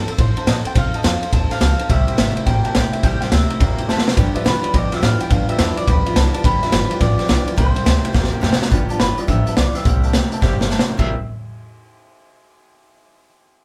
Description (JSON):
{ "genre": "rockabilly", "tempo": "211 BPM", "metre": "4/4", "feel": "swing 64% on 8ths", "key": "unclear", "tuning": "A4 = 439 Hz", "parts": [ { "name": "electric guitar through a small old amp", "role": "melody", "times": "0.0-11.2 s", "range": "A4 to A5", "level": "-27 LUFS", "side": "equal", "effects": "none" }, { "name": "picked steel-string acoustic guitar", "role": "accompaniment", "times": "0.0-11.1 s", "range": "G2 to A4", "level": "-29 LUFS", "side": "equal", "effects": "none" }, { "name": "upright bass", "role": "bass", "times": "0.0-11.2 s", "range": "G1 to C3", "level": "-23 LUFS", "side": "equal", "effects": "none" }, { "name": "warm upright piano", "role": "accompaniment", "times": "0.1-11.2 s", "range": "B4 to C6", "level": "-32 LUFS", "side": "equal", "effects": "none" }, { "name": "raw garage drum kit", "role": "drums", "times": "0.1-11.1 s", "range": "crash cymbal, hi-hat, kick drum, ride cymbal, snare drum", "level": "-20 LUFS", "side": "equal", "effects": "none" }, { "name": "electric guitar through a small old amp", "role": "riff", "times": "1.9-11.1 s", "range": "G2 to E4", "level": "-28 LUFS", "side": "equal", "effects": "none" } ], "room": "moderate small room reverb, RT60 0.5 s", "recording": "band playing live in one room", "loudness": "-17 LUFS", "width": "mono", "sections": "0.0-8.7 A section; 8.7-11.0 B section; 11.0-12.1 C section", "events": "drum fill 3.9, 8.1-8.7, 10.4-11.0; upright piano fill 10.6-11.0", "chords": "0.0 F7; 1.9 C7; 4.2 G7; 7.6 C7; 8.7 G7; 9.9 C7" }